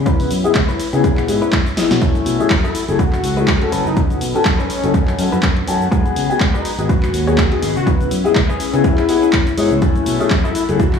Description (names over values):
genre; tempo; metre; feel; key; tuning
filtered disco house; 123 BPM; 4/4; swing 56% on 16ths; F# dorian; A4 = 440 Hz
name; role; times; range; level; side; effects
string machine, full ensemble; sustained chords; 0.0-11.0 s; C#4 to B5; -26 LUFS; left 2 dB; ensemble chorus, sidechain pumping, low-pass filter
fingered electric bass; bass; 0.0-11.0 s; F#1 to C#3; -20 LUFS; left 1 dB; sidechain pumping, low-pass filter
warm grand piano; accompaniment; 0.1-10.8 s; A3 to G#5; -20 LUFS; left 4 dB; phaser, sidechain pumping, low-pass filter
direct-recorded clean electric guitar; riff; 0.1-11.0 s; C#4 to F#5; -28 LUFS; left 3 dB; sidechain pumping, low-pass filter
electronic kick drum; drums; 0.1-10.9 s; none; -17 LUFS; equal; none
house drum kit; drums; 0.1-11.0 s; handclaps, hi-hat, shaker, snare drum; -24 LUFS; equal; none
warm horn section; melody; 2.6-11.0 s; C#4 to G#4; -23 LUFS; left 3 dB; vintage 12-bit sampler grit, sidechain pumping, low-pass filter, digital delay
room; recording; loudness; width
digital ambience; played on a big sound system in a bare room, large studio reverb, small room ambience; -14 LUFS; side -6 dB against mid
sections
0.0-11.0 A section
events
filter sweep 0.0-11.0; drum fill 1.8; clean electric guitar fill 8.8-9.8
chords
0.1 C#m7; 2.0 F#m7; 3.7 B7/F#; 5.9 G#m7; 7.9 C#m7; 9.8 F#m7